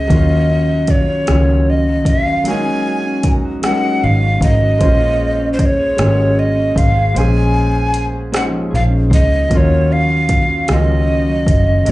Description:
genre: slow six-eight R&B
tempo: 51 BPM (dotted quarters)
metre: 6/8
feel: straight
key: unclear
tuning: A4 = 441 Hz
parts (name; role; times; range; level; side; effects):
- breathy tenor recorder; melody; 0.0-11.9 s; C5 to Ab5; -18 LUFS; equal; slapback echo
- mellow electric guitar; second line; 0.0-11.9 s; Eb3 to C5; -22 LUFS; right 1 dB; slapback echo
- warm grand piano; accompaniment; 0.0-11.9 s; F3 to C5; -20 LUFS; left 1 dB; slapback echo
- vintage muted fingered electric bass; bass; 0.0-11.9 s; Gb1 to Eb2; -16 LUFS; equal; none
- smooth R&B drum kit; drums; 0.1-11.9 s; hi-hat, kick drum, rim click; -18 LUFS; equal; none
room: light reverb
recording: live gig heard through the venue's PA, club reverb, nothing above 10.3 kHz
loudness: -12 LUFS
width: side -17 dB against mid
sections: 0.0-11.9 A section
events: none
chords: 0.1 Ebm9; 2.5 Ab9sus4; 4.8 Bbm9; 9.5 Ebm9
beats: | 0.10 1.28 | 2.45 3.63 | 4.81 5.98 | 7.16 8.34 | 9.51 10.69 | 11.87

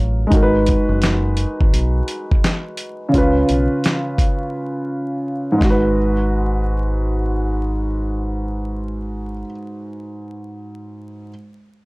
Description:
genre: hip hop, boom-bap hip-hop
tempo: 85 BPM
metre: 4/4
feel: swing 62% on 16ths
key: G# dorian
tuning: A4 = 441 Hz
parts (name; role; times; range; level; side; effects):
- dark baby grand piano; accompaniment; 0.0-11.3 s; G#2 to B4; -20 LUFS; equal; high-pass filter, low-pass filter
- deep dub fingered electric bass; bass; 0.0-9.4 s; F#1 to C#2; -20 LUFS; equal; none
- dusty soul sampler-style drum kit; drums; 0.3-5.8 s; hi-hat, kick drum, snare drum; -18 LUFS; equal; none
room: little or no reverb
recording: dry, gritty hardware recording, vinyl crackle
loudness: -16 LUFS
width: side -24 dB against mid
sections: 0.3-6.0 A section; 6.0-8.8 B section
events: break 4.6-6.0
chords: 0.3 G#m7; 3.1 C#7; 5.6 G#m7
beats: | 0.32 1.02 1.73 2.44 | 3.14 3.85 4.55 5.26 | 5.96 6.67 7.38 8.08

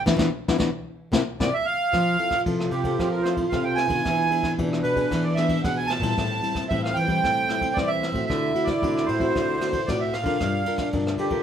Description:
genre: samba and choro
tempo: 113 BPM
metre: 4/4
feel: straight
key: F major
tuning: A4 = 440 Hz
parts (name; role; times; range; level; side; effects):
- accordion; melody; 0.0-11.4 s; G4 to A5; -25 LUFS; right 3 dB; light tremolo tuning
- nylon-string guitar; accompaniment; 0.1-11.4 s; A2 to Bb4; -28 LUFS; left 5 dB; none
- nylon-string guitar; bass; 0.1-11.4 s; G2 to A3; -28 LUFS; equal; none
- jazz brush drum kit; drums; 0.1-11.4 s; kick drum, ride cymbal, rim click, snare drum; -29 LUFS; equal; none
- mellow trombone; second line; 1.9-11.4 s; C4 to F4; -29 LUFS; right 2 dB; none
room: moderate studio reverb, RT60 0.8 s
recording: minimal, uncompressed stereo recording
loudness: -21 LUFS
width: side -8 dB against mid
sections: 0.0-1.9 A section; 1.9-11.4 B section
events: band accent 0.0-1.9; accordion solo 0.0-1.9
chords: 0.0 E5; 0.9 C7; 1.9 Fmaj7; 4.1 E7; 6.2 Am7; 8.3 D7; 10.4 Gm7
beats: 0.34 0.87 1.40 | 1.93 2.46 2.99 3.52 | 4.05 4.58 5.11 5.64 | 6.17 6.71 7.23 7.76 | 8.29 8.82 9.35 9.88 | 10.41 10.94

